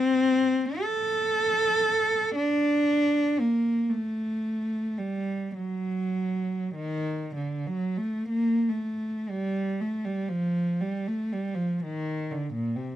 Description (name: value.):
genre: classical, free, expressive piece for unaccompanied cello.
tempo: 26-42 BPM (dotted quarters).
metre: 6/8.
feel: rubato.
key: unclear.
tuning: A4 = 438 Hz.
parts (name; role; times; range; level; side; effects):
warm cello; solo; 0.0-13.0 s; Bb2 to A4; -25 LUFS; equal; none.
room: light reverb.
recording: dark, warm production.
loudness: -25 LUFS.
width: side -12 dB against mid.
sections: 0.0-9.3 A section; 9.3-13.0 B section.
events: none.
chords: none.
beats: 0.84 | 2.37 3.92 | 5.58 7.37 | 9.30 10.80 | 12.30.